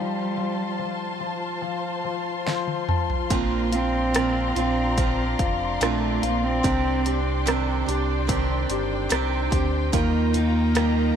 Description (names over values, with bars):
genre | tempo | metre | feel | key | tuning
pop ballad | 72 BPM | 4/4 | straight | Bb major | A4 = 440 Hz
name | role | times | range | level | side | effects
dark cello | melody | 0.0-11.2 s | G3 to C4 | -26 LUFS | equal | slapback echo
warm grand piano | accompaniment | 0.0-11.2 s | Bb2 to A5 | -30 LUFS | left 11 dB | none
rich studio string section | sustained chords | 0.0-11.2 s | D4 to C6 | -31 LUFS | left 2 dB | none
pop drum kit | drums | 2.5-10.9 s | hi-hat, kick drum, rim click, snare drum, toms | -27 LUFS | right 1 dB | none
picked steel-string acoustic guitar | arpeggios | 3.3-11.2 s | Bb2 to G4 | -28 LUFS | right 12 dB | none
sub bass with octave | bass | 3.3-11.1 s | F1 to Eb2 | -26 LUFS | right 1 dB | none
room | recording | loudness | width
light reverb, small room ambience | 1960s-style stereo with parts hard left and right | -21 LUFS | side -8 dB against mid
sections
0.0-11.2 A section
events
grand piano fill 2.0-3.3; drum fill 2.5-3.3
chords
0.0 F; 3.3 Bbadd9; 6.6 Cmadd9; 9.9 Ebadd9